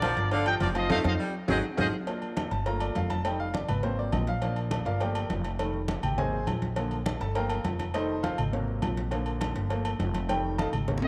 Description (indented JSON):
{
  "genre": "latin, salsa",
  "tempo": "204 BPM",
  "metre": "4/4",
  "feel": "straight",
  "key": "Bb major",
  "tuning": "A4 = 442 Hz",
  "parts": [
    { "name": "bright trumpet section", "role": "melody", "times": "0.0-1.9, 11.0-11.1 s", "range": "Ab4 to G5", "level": "-33 LUFS", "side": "equal", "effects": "slapback echo" },
    { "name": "clear saxophone section", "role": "second line", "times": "0.0-1.9 s", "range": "D3 to A3", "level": "-37 LUFS", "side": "equal", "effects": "none" },
    { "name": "bright grand piano", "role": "accompaniment", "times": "0.0-11.1 s", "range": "C3 to Bb5", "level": "-34 LUFS", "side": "equal", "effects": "none" },
    { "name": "upright bass", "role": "bass", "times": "0.0-11.1 s", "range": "F1 to F2", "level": "-34 LUFS", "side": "equal", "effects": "none" },
    { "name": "congas", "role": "percussion", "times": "0.0-11.1 s", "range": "none", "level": "-37 LUFS", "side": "equal", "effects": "none" },
    { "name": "cowbell and bongos", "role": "percussion", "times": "0.0-11.0 s", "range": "none", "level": "-43 LUFS", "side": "equal", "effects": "none" },
    { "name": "timbales and agogo bells", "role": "percussion", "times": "0.0-11.1 s", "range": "none", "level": "-39 LUFS", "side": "equal", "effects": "none" }
  ],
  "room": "moderate plate reverb, RT60 2.8 s",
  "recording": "none",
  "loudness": "-29 LUFS",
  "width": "mono",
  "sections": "0.0-2.1 A section; 2.1-11.1 B section",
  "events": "band accent 0.9-2.1; drum fill 1.6-2.1, 10.9; grand piano solo 2.1-11.1",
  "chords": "0.3 G7(no3); 0.9 F7; 1.5 Ab7(no3); 2.1 Bb; 2.7 Gm7; 3.2 F7; 3.8 Ab7; 4.4 Bb; 5.0 Gm7; 5.6 F7; 6.2 Ab7; 6.8 Bb; 7.4 Gm7; 7.9 F7; 8.5 Ab7; 9.1 Bb; 9.7 Gm7; 10.3 F7",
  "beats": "0.02 0.32 0.61 | 0.90 1.20 1.49 1.78 | 2.07 2.37 2.66 2.95 | 3.25 3.54 3.83 4.13 | 4.42 4.71 5.01 5.30 | 5.59 5.89 6.18 6.47 | 6.77 7.06 7.36 7.65 | 7.94 8.24 8.53 8.82 | 9.12 9.41 9.71 10.00 | 10.29 10.59 10.88"
}